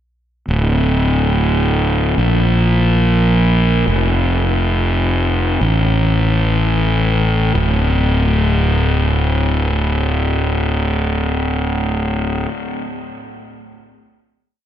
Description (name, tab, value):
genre	post-rock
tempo	free time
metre	none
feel	none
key	D minor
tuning	A4 = 439 Hz
part	fuzz fingered electric bass	solo	0.5-12.5 s	D1 to Bb1	-14 LUFS	equal	overdrive, ping-pong delay
room	wet huge ambient reverb, RT60 4.3 s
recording	dreamy mix soaked in reverb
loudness	-14 LUFS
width	side -11 dB against mid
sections	0.5-7.5 A section; 7.5-11.8 final note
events	slowing down 3.9-7.5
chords	none